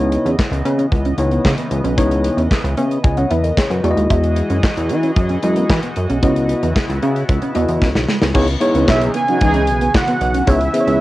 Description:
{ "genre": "early-eighties boogie funk", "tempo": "113 BPM", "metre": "4/4", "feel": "straight", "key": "C# minor", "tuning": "A4 = 435 Hz", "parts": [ { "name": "tine electric piano", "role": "accompaniment", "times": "0.0-11.0 s", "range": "G#3 to G#5", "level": "-18 LUFS", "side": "left 2 dB", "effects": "cassette tape" }, { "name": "chorused pulse-width pad", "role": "sustained chords", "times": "0.0-11.0 s", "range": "C#3 to D#5", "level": "-26 LUFS", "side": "equal", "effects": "cassette tape" }, { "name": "chorused synth bass", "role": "bass", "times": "0.0-11.0 s", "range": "B1 to E3", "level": "-18 LUFS", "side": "equal", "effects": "none" }, { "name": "mellow electric guitar", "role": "riff", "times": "0.1-11.0 s", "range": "G#3 to E4", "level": "-23 LUFS", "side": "right 3 dB", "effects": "ensemble chorus, cassette tape" }, { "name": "modern studio drum kit", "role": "drums", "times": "0.1-11.0 s", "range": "crash cymbal, handclaps, hi-hat, kick drum, snare drum", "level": "-18 LUFS", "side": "equal", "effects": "cassette tape" }, { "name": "mellow synth brass", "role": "second line", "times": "8.6-9.6 s", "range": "E3 to C#5", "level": "-19 LUFS", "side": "equal", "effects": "chorus, cassette tape" }, { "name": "fat analog lead", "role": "melody", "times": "8.9-11.0 s", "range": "E5 to G#5", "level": "-18 LUFS", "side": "right 2 dB", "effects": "chorus, cassette tape" } ], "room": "light reverb", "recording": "home recording on cassette", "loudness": "-14 LUFS", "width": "side -16 dB against mid", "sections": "0.0-8.4 A section; 8.4-11.0 B section", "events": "drum fill 7.8-8.4", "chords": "0.0 C#m9; 3.8 C#m11; 8.4 C#m9" }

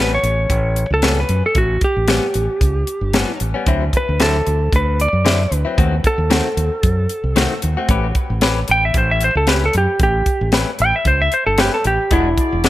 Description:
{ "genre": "straight-eighth soul blues", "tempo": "114 BPM", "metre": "4/4", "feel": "straight", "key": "A mixolydian", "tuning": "A4 = 441 Hz", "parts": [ { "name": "clean lap steel guitar", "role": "melody", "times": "0.0-12.6 s", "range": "E4 to G5", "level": "-18 LUFS", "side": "equal", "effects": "none" }, { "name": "direct-recorded clean electric guitar", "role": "stabs", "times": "0.0-12.7 s", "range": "A2 to B4", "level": "-23 LUFS", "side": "left 4 dB", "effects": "spring reverb, digital delay" }, { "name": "fingered electric bass", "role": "bass", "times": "0.0-12.7 s", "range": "E1 to F#2", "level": "-19 LUFS", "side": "equal", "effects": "none" }, { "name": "tight funk drum kit", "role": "drums", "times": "0.2-12.7 s", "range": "hi-hat, kick drum, snare drum", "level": "-18 LUFS", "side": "equal", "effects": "none" }, { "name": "warm horn section", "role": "sustained chords", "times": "12.1-12.7 s", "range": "F#4 to D5", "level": "-26 LUFS", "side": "equal", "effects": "none" } ], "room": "little or no reverb", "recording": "none", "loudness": "-14 LUFS", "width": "side -15 dB against mid", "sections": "0.0-12.7 A section", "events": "electric slide guitar solo 0.0-12.7", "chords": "0.0 A9; 3.7 D9; 5.8 D#dim7; 7.9 A9; 12.1 E9" }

